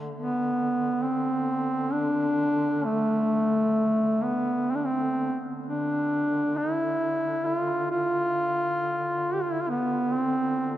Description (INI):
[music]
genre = caucasian folk, Caucasian lament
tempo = 67 BPM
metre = 3/4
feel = rubato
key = D dorian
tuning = A4 = 439 Hz
[part]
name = warm duduk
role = drone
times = 0.0-10.8 s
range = D3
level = -36 LUFS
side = left 1 dB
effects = none
[part]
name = breathy duduk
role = melody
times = 0.1-10.8 s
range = A3 to G4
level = -24 LUFS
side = equal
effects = none
[sound]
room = wet cathedral reverb, RT60 6.2 s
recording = none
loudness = -24 LUFS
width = side -13 dB against mid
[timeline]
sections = 0.0-10.8 A section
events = none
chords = none